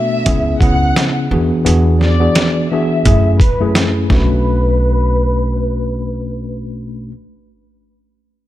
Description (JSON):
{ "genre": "hip hop, boom-bap hip-hop", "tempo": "86 BPM", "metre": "4/4", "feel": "swing 60% on 16ths", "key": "B dorian", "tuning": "A4 = 440 Hz", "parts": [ { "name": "dark studio violin section", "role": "melody", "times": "0.0-6.5 s", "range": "B4 to F#5", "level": "-21 LUFS", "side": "left 1 dB", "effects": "low-pass filter" }, { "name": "tine electric piano", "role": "accompaniment", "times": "0.0-7.1 s", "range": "F#2 to G#4", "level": "-17 LUFS", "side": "left 1 dB", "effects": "medium stereo tremolo, low-pass filter" }, { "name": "upright bass", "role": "bass", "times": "0.3-7.1 s", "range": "B1 to F#2", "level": "-16 LUFS", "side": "equal", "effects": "none" }, { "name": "trip hop sampler-style drum kit", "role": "drums", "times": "0.3-4.3 s", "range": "hi-hat, kick drum, snare drum", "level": "-16 LUFS", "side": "equal", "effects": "none" } ], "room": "little or no reverb", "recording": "faint mains hum", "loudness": "-12 LUFS", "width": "side -14 dB against mid", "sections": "0.0-4.5 A section; 4.5-7.2 B section", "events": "filter sweep 0.0-4.5", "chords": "0.3 C#m7; 1.3 E7; 3.1 F#m7; 4.1 Bm7" }